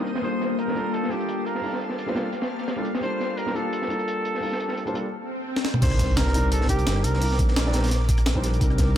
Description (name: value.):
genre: liquid drum and bass.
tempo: 172 BPM.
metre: 4/4.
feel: swing 53% on 16ths.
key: C dorian.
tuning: A4 = 440 Hz.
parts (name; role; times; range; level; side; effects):
felt-muted upright piano; accompaniment; 0.0-9.0 s; G3 to D5; -29 LUFS; equal; vintage 12-bit sampler grit, low-pass filter, ping-pong delay.
shimmering ambient pad; sustained chords; 0.0-9.0 s; Eb3 to Eb6; -32 LUFS; left 4 dB; chorus, built-in reverb, vintage 12-bit sampler grit, sidechain pumping.
crunchy breakbeat drum kit; drums; 0.1-8.9 s; hi-hat, snare drum; -32 LUFS; right 1 dB; high-pass filter on hats, low-pass filter on hats, high-pass filter on snare, low-pass filter on snare, high-pass filter on room, low-pass filter on room.
warm flugelhorn; melody; 0.2-7.4 s; G4 to C5; -31 LUFS; right 1 dB; dub echo.
swell and impact; sound effects; 5.2-7.2 s; none; -29 LUFS; equal; none.
breakbeat sampler-style drum kit; drums; 5.6-8.9 s; crash cymbal, hi-hat, rim click, snare drum, toms; -28 LUFS; equal; none.
dark detuned saw bass; bass; 5.8-9.0 s; G1 to C2; -23 LUFS; equal; tube saturation.
electronic kick drum; drums; 5.8-8.9 s; none; -24 LUFS; equal; none.
room: light reverb.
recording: none.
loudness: -22 LUFS.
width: side -11 dB against mid.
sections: 0.0-5.8 A section; 5.8-9.0 B section.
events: filter sweep on felt piano 0.0-5.8; swell 5.2-5.8; drum fill 5.6; drop 5.8-9.0; impact 5.8-7.2.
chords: 0.2 Gm9; 5.8 Cm9.